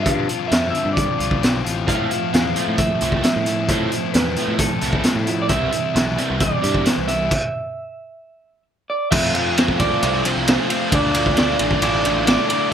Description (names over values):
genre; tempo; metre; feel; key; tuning
indie rock; 132 BPM; 4/4; straight; F lydian; A4 = 438 Hz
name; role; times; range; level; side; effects
electric guitar through a small old amp; melody; 0.0-12.7 s; A4 to F5; -23 LUFS; right 2 dB; slapback echo
overdriven electric guitar; riff; 0.0-12.7 s; G2 to F4; -25 LUFS; left 9 dB; none
growling picked electric bass; bass; 0.0-12.4 s; A1 to A2; -25 LUFS; equal; overdrive
raw garage drum kit; drums; 0.1-12.6 s; crash cymbal, hi-hat, kick drum, ride cymbal, snare drum; -20 LUFS; equal; none
biting overdriven guitar; riff; 1.9-12.7 s; F2 to F4; -24 LUFS; right 7 dB; analog chorus, slapback echo
warm analog pad; sustained chords; 9.1-12.7 s; D4 to D5; -34 LUFS; right 2 dB; none
room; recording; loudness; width
light reverb; none; -17 LUFS; side -8 dB against mid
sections
0.0-9.1 A section; 9.1-12.7 B section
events
stop 7.3-9.1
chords
0.0 G7sus4; 1.9 Fmaj7; 5.5 Cmaj7; 9.1 F6; 10.9 Dmadd9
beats
| 0.07 0.52 0.97 1.43 | 1.88 2.33 2.79 3.24 | 3.69 4.14 4.60 5.05 | 5.50 5.96 6.41 6.86 | 7.31 7.77 8.22 8.67 | 9.12 9.57 10.02 10.47 | 10.92 11.37 11.82 12.27 | 12.72